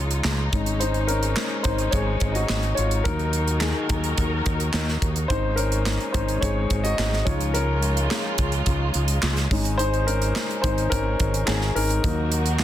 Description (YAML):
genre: piano-driven pop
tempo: 107 BPM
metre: 4/4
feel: straight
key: unclear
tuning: A4 = 440 Hz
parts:
  - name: warm concert grand piano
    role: accompaniment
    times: 0.0-12.6 s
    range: F3 to Eb5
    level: -26 LUFS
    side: left 3 dB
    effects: none
  - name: warm studio string section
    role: sustained chords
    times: 0.0-12.6 s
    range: Db3 to Bb4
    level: -31 LUFS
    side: equal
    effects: none
  - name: fingered electric bass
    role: bass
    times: 0.0-12.6 s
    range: Ab1 to Eb2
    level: -24 LUFS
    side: equal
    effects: none
  - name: modern studio drum kit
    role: drums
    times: 0.1-12.6 s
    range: handclaps, hi-hat, kick drum, snare drum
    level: -26 LUFS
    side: right 1 dB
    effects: none
room: light reverb, small room ambience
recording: dense, heavily limited modern master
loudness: -21 LUFS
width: side -12 dB against mid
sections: 0.0-12.6 A section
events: grand piano solo 0.0-12.6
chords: 0.0 Dbadd9; 0.5 Absus4; 3.1 Ebm; 5.3 Absus4; 7.3 Dbadd9; 9.5 Absus4; 12.0 Ebm